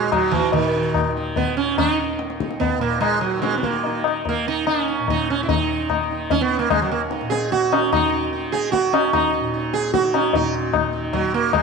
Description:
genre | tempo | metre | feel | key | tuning
indian classical, Hindustani | 147 BPM | 3/4 | straight | Eb raga bhairavi | A4 = 440 Hz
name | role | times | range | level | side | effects
sitar | melody | 0.0-11.6 s | Eb3 to Ab4 | -21 LUFS | right 7 dB | none
tanpura | drone | 0.0-11.6 s | Eb2 to Eb3 | -29 LUFS | left 1 dB | none
tabla | percussion | 0.1-11.6 s | none | -23 LUFS | left 9 dB | none
room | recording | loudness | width
wet echo chamber reverb, RT60 1.8 s, small room ambience | 1960s-style stereo with parts hard left and right | -18 LUFS | side -4 dB against mid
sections
0.5-10.3 A section; 10.3-11.6 B section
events
speeding up 0.0-11.6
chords
none

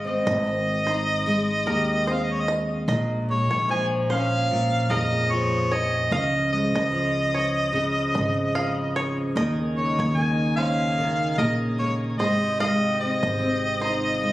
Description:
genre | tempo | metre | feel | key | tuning
acoustic pop | 74 BPM | 4/4 | swing 55% on 16ths | unclear | A4 = 439 Hz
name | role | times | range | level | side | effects
nylon-string guitar | accompaniment | 0.0-14.3 s | Bb2 to Ab4 | -26 LUFS | equal | double-tracked left and right
bluegrass banjo | arpeggios | 0.0-14.2 s | Bb4 to F5 | -31 LUFS | right 2 dB | none
upright bass | bass | 0.0-14.3 s | Ab1 to F2 | -28 LUFS | equal | none
mellow harmonica | melody | 0.1-14.3 s | Db5 to Ab5 | -25 LUFS | equal | tape echo
tonewheel organ | sustained chords | 9.4-14.3 s | C3 to Ab4 | -33 LUFS | equal | slow rotary speaker
room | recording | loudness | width
light reverb, small room ambience | recorded on a phone in the room, studio reverb, vinyl crackle | -21 LUFS | side -16 dB against mid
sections
0.0-14.3 A section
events
none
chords
0.0 Abmaj7; 2.9 Bbm7; 6.1 Db; 9.4 Eb7sus4; 12.2 Abmaj7

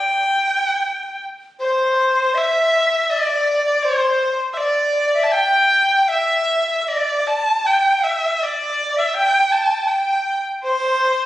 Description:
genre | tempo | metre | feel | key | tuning
chinese traditional, Chinese chamber ensemble | 80 BPM | 2/4 | rubato | G zhi mode | A4 = 440 Hz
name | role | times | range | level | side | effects
clear erhu | melody | 0.0-11.3 s | C5 to A5 | -18 LUFS | right 1 dB | none
bright large dizi | second line | 1.6-11.3 s | C5 to G5 | -19 LUFS | left 1 dB | none
room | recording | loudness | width
moderate recital hall reverb, RT60 1.5 s | recorded on a phone in the room, studio reverb | -16 LUFS | side -14 dB against mid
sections
0.0-1.6 A section; 1.6-11.3 B section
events
none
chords
none

